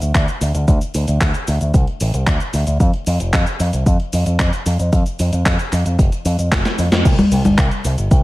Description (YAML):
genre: italo disco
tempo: 113 BPM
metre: 4/4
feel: straight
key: F major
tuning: A4 = 440 Hz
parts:
  - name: picked electric bass with an envelope filter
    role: bass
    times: 0.0-8.2 s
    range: F1 to F2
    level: -17 LUFS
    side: equal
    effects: none
  - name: clean 12-bit digital drum machine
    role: drums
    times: 0.0-8.2 s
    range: cabasa, congas, crash cymbal, handclaps, hi-hat, snare drum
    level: -20 LUFS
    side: left 1 dB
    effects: gated reverb
  - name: electronic kick drum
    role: drums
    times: 0.1-8.2 s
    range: none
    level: -16 LUFS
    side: equal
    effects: overdrive
room: little or no reverb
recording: vinyl crackle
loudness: -14 LUFS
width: side -18 dB against mid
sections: 0.0-7.1 A section; 7.1-8.2 B section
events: drum fill 6.5-7.1; band accent 6.9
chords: none